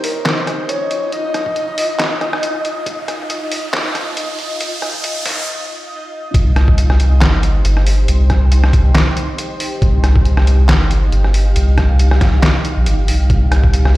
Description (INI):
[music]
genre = deep dubstep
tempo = 138 BPM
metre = 4/4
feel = swing 55% on 16ths, half-time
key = C minor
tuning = A4 = 443 Hz
[part]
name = breathy flute-like synth lead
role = melody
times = 0.0-2.6 s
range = Bb4 to Eb5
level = -22 LUFS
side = left 1 dB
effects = chorus, dub echo
[part]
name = granular cloud pad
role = sustained chords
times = 0.0-14.0 s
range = Eb4 to F5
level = -25 LUFS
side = equal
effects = built-in reverb
[part]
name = trip hop sampler-style drum kit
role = drums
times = 0.0-13.9 s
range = handclaps, hi-hat, rim click, snare drum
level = -20 LUFS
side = equal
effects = none
[part]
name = riser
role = sound effects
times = 1.0-5.5 s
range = none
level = -27 LUFS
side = right 1 dB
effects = none
[part]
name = flickering grainy texture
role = texture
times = 0.0-5.5 s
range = Eb4 to Eb5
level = -29 LUFS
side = left 1 dB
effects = built-in reverb
[part]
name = electronic kick drum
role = drums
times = 1.5-13.7 s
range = none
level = -15 LUFS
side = equal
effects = none
[part]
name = soft dub sub bass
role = bass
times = 6.3-13.9 s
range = G1 to C2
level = -12 LUFS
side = equal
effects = none
[sound]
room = light reverb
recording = played on a big sound system in a bare room, large studio reverb, high-pass filter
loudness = -12 LUFS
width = side -17 dB against mid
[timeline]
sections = 0.0-6.3 A section; 6.3-14.0 B section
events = build-up 0.0-6.3; filter sweep 0.0-6.3; riser 1.0-5.5; break 5.5-6.3; drop 6.3-14.0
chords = 0.0 N.C.; 6.3 Cm